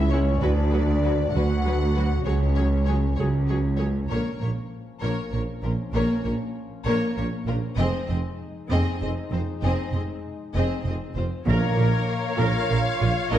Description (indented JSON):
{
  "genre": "cinematic, epic orchestral film score",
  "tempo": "65 BPM (dotted quarters)",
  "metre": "6/8",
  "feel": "straight",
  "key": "Bb minor from 4.1 s",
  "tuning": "A4 = 440 Hz",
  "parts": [
    { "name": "warm symphonic violin section", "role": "second line", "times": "0.0-13.4 s", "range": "F4 to F#5", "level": "-35 LUFS", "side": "left 4 dB", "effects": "none" },
    { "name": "warm French horn section", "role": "sustained chords", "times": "0.0-13.4 s", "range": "F3 to F#4", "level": "-33 LUFS", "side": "left 4 dB", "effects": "none" },
    { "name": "mellow tuba", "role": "bass", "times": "0.0-13.4 s", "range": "F1 to D2", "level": "-30 LUFS", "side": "right 2 dB", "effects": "none" },
    { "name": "rich symphonic cello section", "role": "bass", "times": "0.0-13.4 s", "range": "C#2 to Bb2", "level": "-29 LUFS", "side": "right 2 dB", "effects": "none" },
    { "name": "rich symphonic double bass section", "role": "bass", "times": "0.0-13.4 s", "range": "F1 to D2", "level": "-26 LUFS", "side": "right 2 dB", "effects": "none" },
    { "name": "clear symphonic violin section", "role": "melody", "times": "0.1-13.4 s", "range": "Bb4 to F5", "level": "-34 LUFS", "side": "left 4 dB", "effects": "none" },
    { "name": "warm symphonic viola section", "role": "accompaniment", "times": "0.1-13.4 s", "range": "F#3 to Db5", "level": "-30 LUFS", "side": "equal", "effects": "none" },
    { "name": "timpani", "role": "percussion", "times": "11.5-12.4 s", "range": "Bb2", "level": "-26 LUFS", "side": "right 1 dB", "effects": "none" }
  ],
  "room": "moderate scoring stage reverb, RT60 1.8 s",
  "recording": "dark, warm production",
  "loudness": "-22 LUFS",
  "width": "side -11 dB against mid",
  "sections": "0.0-4.1 A section; 4.1-11.5 B section; 11.5-13.4 C section",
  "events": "none",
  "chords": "0.4 Bm/D; 2.3 C#sus4; 4.1 Bbm; 7.8 Fm7; 11.5 Bbm",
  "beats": "| 0.41 1.33 | 2.25 3.18 | 4.10 5.02 | 5.94 6.86 | 7.79 8.71 | 9.63 10.55 | 11.47 12.39 | 13.31"
}